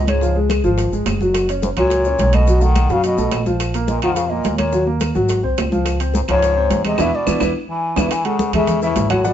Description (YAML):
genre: Afro-Cuban jazz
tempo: 213 BPM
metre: 4/4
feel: straight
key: Db major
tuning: A4 = 440 Hz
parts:
  - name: breathy mellow baroque flute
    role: melody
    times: 0.0-9.3 s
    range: C5 to G#5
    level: -21 LUFS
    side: left 1 dB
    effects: none
  - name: trombone with metal mute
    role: second line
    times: 0.0-9.3 s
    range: Gb2 to E3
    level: -26 LUFS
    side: left 5 dB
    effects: none
  - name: warm baby grand piano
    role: accompaniment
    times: 0.0-9.3 s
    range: E3 to F#5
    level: -20 LUFS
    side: equal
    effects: none
  - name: upright bass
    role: bass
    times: 0.0-9.3 s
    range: Gb1 to Gb2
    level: -20 LUFS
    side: equal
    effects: none
  - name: bongos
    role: percussion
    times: 0.1-9.3 s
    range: none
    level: -32 LUFS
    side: left 4 dB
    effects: none
  - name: claves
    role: percussion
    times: 0.1-9.2 s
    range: none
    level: -31 LUFS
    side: left 1 dB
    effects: none
  - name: congas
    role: percussion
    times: 0.1-9.3 s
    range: none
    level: -25 LUFS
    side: left 1 dB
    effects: none
  - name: maracas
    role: percussion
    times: 0.1-9.3 s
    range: none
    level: -37 LUFS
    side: left 6 dB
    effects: none
  - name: timbales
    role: percussion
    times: 0.1-9.2 s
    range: none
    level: -27 LUFS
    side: right 6 dB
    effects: none
room: light reverb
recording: band playing live in one room, nothing above 7.8 kHz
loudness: -15 LUFS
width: side -10 dB against mid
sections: 0.0-8.1 A section; 8.1-9.3 B section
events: drum fill 2.8-3.6, 7.7-8.1; band accent 7.0-8.1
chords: 0.2 Db; 1.4 Gb; 2.5 Cb7; 3.6 Bb5; 4.7 Ebm; 5.3 Ab7; 5.9 Dbmaj7; 7.0 E7; 8.1 Amaj7